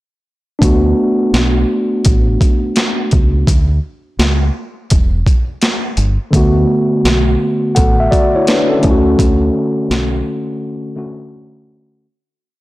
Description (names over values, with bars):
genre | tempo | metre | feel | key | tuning
hip hop, boom-bap hip-hop | 84 BPM | 4/4 | swing 63% on 16ths | D major | A4 = 441 Hz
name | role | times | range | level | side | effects
mellow tine electric piano | accompaniment | 0.6-12.1 s | D3 to F#5 | -14 LUFS | equal | cassette tape, high-pass filter, low-pass filter
deep dub fingered electric bass | bass | 0.6-10.2 s | E1 to D2 | -15 LUFS | equal | transformer saturation
boom bap sampler-style drum kit | drums | 0.6-10.1 s | hi-hat, kick drum, snare drum | -14 LUFS | equal | overdrive
room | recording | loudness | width
light reverb | blown-out, overdriven recording, overdrive | -11 LUFS | side -18 dB against mid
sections
0.6-12.0 verse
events
break 3.5-6.3, 10.6-12.0; fade-out 9.2-12.0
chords
0.6 D6; 3.5 Em7; 6.3 D6; 8.8 Bm9 (rootless)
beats
| 0.62 1.33 2.05 2.76 | 3.48 4.19 4.90 5.62 | 6.33 7.05 7.76 8.47 | 9.19 9.90 10.62 11.33